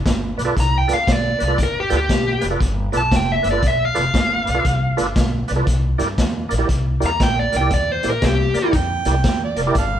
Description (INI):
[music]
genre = electric blues shuffle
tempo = 118 BPM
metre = 4/4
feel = swing 63% on 8ths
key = unclear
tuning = A4 = 437 Hz
[part]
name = upright bass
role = bass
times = 0.0-10.0 s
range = F1 to G2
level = -22 LUFS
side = equal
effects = none
[part]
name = crunchy breakbeat drum kit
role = drums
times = 0.1-9.9 s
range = hi-hat, kick drum, snare drum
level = -21 LUFS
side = equal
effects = none
[part]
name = tonewheel organ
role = accompaniment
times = 0.4-9.8 s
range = E4 to D5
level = -24 LUFS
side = right 3 dB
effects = slow rotary speaker, overdrive, chorus vibrato
[part]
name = dark smooth lead guitar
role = melody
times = 0.6-8.7 s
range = G4 to Bb5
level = -20 LUFS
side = equal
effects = overdrive
[part]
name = warm harmonica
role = second line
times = 8.8-10.0 s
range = A4 to G5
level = -24 LUFS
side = right 7 dB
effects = overdrive
[sound]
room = light reverb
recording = band playing live in one room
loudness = -16 LUFS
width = side -10 dB against mid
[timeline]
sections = 0.0-10.0 A section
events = none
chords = 0.0 G7; 5.7 C7